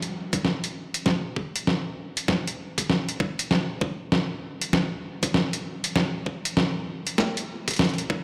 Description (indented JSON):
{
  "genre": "glitch hop",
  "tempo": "98 BPM",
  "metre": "4/4",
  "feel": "swing 62% on 16ths",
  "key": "none",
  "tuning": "none",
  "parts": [
    { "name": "boom bap sampler-style drum kit", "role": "drums", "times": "0.0-8.1 s", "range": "hi-hat, snare drum", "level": "-27 LUFS", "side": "equal", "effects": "none" },
    { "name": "electronic kick drum", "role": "drums", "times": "0.3-8.2 s", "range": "none", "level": "-29 LUFS", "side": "equal", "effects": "overdrive, high-pass filter on kick, high-pass filter on room" }
  ],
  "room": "wet lush hall reverb, RT60 2.8 s",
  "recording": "played on a big sound system in a bare room, large studio reverb",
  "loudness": "-26 LUFS",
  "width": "mono",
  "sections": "0.0-8.2 A section",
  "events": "build-up 0.0-8.2; drum fill 0.0-8.2",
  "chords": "none"
}